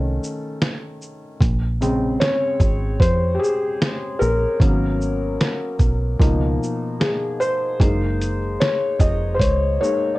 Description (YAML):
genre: lo-fi hip hop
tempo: 75 BPM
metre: 4/4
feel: swing 65% on 16ths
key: unclear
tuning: A4 = 435 Hz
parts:
  - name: felt-muted upright piano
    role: accompaniment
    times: 0.0-10.2 s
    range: Cb3 to Eb5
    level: -21 LUFS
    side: left 1 dB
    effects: low-pass filter, cassette tape
  - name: deep dub fingered electric bass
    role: bass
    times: 0.0-9.8 s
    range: F1 to F2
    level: -21 LUFS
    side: equal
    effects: none
  - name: lo-fi sampler-style drum kit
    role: drums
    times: 0.2-10.1 s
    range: hi-hat, kick drum, shaker, snare drum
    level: -19 LUFS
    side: right 1 dB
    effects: vintage 12-bit sampler grit
room: light reverb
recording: home recording on cassette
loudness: -18 LUFS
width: side -19 dB against mid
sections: 0.0-10.2 A section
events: felt piano solo 0.0-10.2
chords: 0.0 F7b13 (rootless); 1.4 Bbm9; 4.6 Abm11; 6.2 Db13; 7.8 Gb69